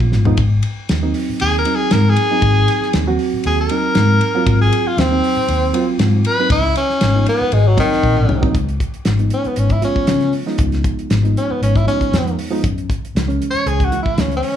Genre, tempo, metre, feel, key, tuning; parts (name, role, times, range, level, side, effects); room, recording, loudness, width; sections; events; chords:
straight-eighth soul blues; 117 BPM; 4/4; swing 54% on 16ths; A4 = 440 Hz
reed electric piano; accompaniment; 0.0-14.5 s; Fb3 to Gb4; -21 LUFS; right 4 dB; overdrive
vintage muted fingered electric bass; bass; 0.0-14.4 s; Ab1 to Db3; -16 LUFS; left 1 dB
damped 70s drum kit; drums; 0.0-14.6 s; hi-hat, kick drum, ride cymbal, snare drum, toms; -21 LUFS; left 1 dB
clear tenor saxophone; melody; 1.4-14.6 s; Eb3 to Db5; -18 LUFS; left 1 dB
light reverb; small room reverb; -14 LUFS; side -10 dB against mid
0.0-8.5 A section; 8.5-14.6 B section
tenor saxophone solo 0.0-8.5; drum fill 0.1, 8.0-8.5
0.4 Ab9; 6.5 Db9; 7.5 Ab9; 8.5 Db9; 12.6 Gb9